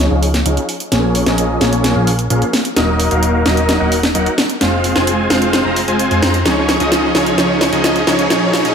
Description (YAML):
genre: EDM, festival progressive house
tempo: 130 BPM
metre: 4/4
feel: straight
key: Db major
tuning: A4 = 445 Hz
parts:
  - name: supersaw chords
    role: riff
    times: 0.0-8.7 s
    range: F3 to Bb5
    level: -15 LUFS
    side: equal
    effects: low-pass filter, ping-pong delay
  - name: fat analog bass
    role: bass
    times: 0.0-8.7 s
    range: Eb1 to F2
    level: -20 LUFS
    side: equal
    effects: none
  - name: house drum kit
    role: drums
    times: 0.2-8.7 s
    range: hi-hat, snare drum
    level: -17 LUFS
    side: equal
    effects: none
room: moderate lush hall reverb, RT60 1.7 s, digital ambience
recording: high-pass filter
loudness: -12 LUFS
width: side -7 dB against mid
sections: 0.0-8.7 A section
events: build-up 0.0-8.7; drum fill 0.0-8.7; filter sweep on supersaw synth 0.0-8.7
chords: 0.0 Dbadd9; 0.9 Bbm7; 2.8 Ebm; 4.6 Fm; 6.5 Dbadd9